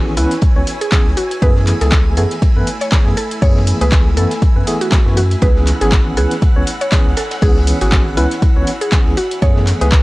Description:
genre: deep house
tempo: 120 BPM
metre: 4/4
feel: swing 57% on 16ths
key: C# minor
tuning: A4 = 440 Hz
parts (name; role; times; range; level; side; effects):
- mallet-like synth pluck; melody; 0.0-10.0 s; E4 to C#5; -22 LUFS; equal; chorus, analog delay
- airy breathy pad; sustained chords; 0.0-10.0 s; A3 to E6; -32 LUFS; equal; chorus, sidechain pumping
- mellow tine electric piano; stabs; 0.0-10.0 s; E3 to C#5; -21 LUFS; equal; medium tremolo, sidechain pumping
- round analog bass; bass; 0.0-10.0 s; G#1 to F#2; -16 LUFS; equal; sidechain pumping
- ethereal airy pad; texture; 0.0-10.0 s; A3 to B5; -30 LUFS; right 1 dB; ensemble chorus, built-in reverb, phaser, sidechain pumping
- string machine, violins; texture; 0.0-10.0 s; F#5 to G#5; -31 LUFS; equal; ensemble chorus, sidechain pumping
- compact cocktail drum kit; drums; 0.1-10.0 s; hi-hat, ride cymbal, snare drum; -32 LUFS; right 1 dB; sidechain pumping on cymbals, high-pass filter on cymbals, studio ambience, sidechain pumping on hats, high-pass filter on hats, high-pass filter on snare, high-pass filter on room
- deep house drum kit; drums; 0.2-10.0 s; handclaps, hi-hat; -22 LUFS; equal; overdrive, studio ambience
- electronic kick drum; drums; 0.4-10.0 s; none; -13 LUFS; equal; overdrive, studio ambience
room: little or no reverb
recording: dry, gritty hardware recording, cassette tape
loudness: -11 LUFS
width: side -20 dB against mid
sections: 0.0-10.0 A section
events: none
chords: 0.0 C#m7; 1.4 F#m11; 5.4 C#m7; 9.4 F#m11

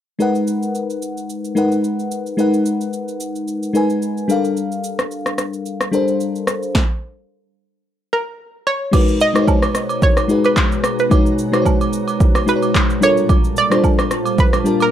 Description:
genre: amapiano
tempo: 110 BPM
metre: 4/4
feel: swing 55% on 16ths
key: unclear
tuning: A4 = 442 Hz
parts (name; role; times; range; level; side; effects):
- bell-like FM electric piano; accompaniment; 0.2-14.9 s; G3 to A5; -18 LUFS; left 2 dB; chorus, plate reverb
- deep house drum kit; drums; 0.2-14.9 s; crash cymbal, handclaps, kick drum, rim click, shaker, snare drum; -17 LUFS; equal; none
- analog pluck; melody; 8.1-14.9 s; Bb4 to D#5; -18 LUFS; right 3 dB; chorus, plate reverb
- glassy FM pad; sustained chords; 9.2-14.9 s; Bb2 to A#5; -25 LUFS; right 1 dB; ensemble chorus, built-in reverb, sidechain pumping
- agogo bells and woodblock; percussion; 8.9-14.9 s; none; -26 LUFS; right 7 dB; none
room: moderate studio ambience, RT60 0.5 s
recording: none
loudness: -15 LUFS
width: side -10 dB against mid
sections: 0.2-8.9 A section; 8.9-14.9 B section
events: stop 6.7-8.9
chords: 0.2 G#m9; 4.3 Gm9; 8.9 G#m9; 13.0 Gm9

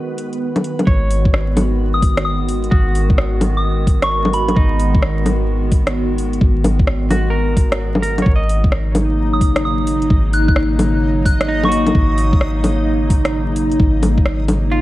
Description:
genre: future garage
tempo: 130 BPM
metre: 4/4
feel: swing 65% on 16ths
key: G# minor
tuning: A4 = 440 Hz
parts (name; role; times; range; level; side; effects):
- warbly tape-like pad; sustained chords; 0.0-14.8 s; C#3 to F#4; -21 LUFS; equal; chorus, built-in reverb, phaser, sidechain pumping
- backwards swelling texture; texture; 0.0-0.9, 9.1-14.8 s; B3 to D#5; -30 LUFS; right 2 dB; built-in reverb
- garage drum kit; drums; 0.2-14.6 s; bongos, hi-hat, rim click; -20 LUFS; left 1 dB; vintage 12-bit sampler grit, studio ambience
- semi-hollow electric guitar; accompaniment; 0.9-14.8 s; D#4 to D#5; -26 LUFS; right 2 dB; sidechain pumping, tape echo
- soft 808-style bass; bass; 0.9-14.8 s; G#1; -18 LUFS; equal; sidechain pumping
- electronic kick drum; drums; 0.9-14.2 s; none; -14 LUFS; equal; vintage 12-bit sampler grit, studio ambience
- soft synth bell; melody; 1.9-4.8, 9.3-12.3 s; B5 to F#6; -23 LUFS; equal; chorus, phaser, vintage 12-bit sampler grit, tape echo
room: moderate recital hall reverb, RT60 1.5 s, digital ambience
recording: vinyl crackle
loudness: -13 LUFS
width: side -16 dB against mid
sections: 0.9-14.8 A section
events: none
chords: 0.0 G#m7; 8.3 F#6/G#

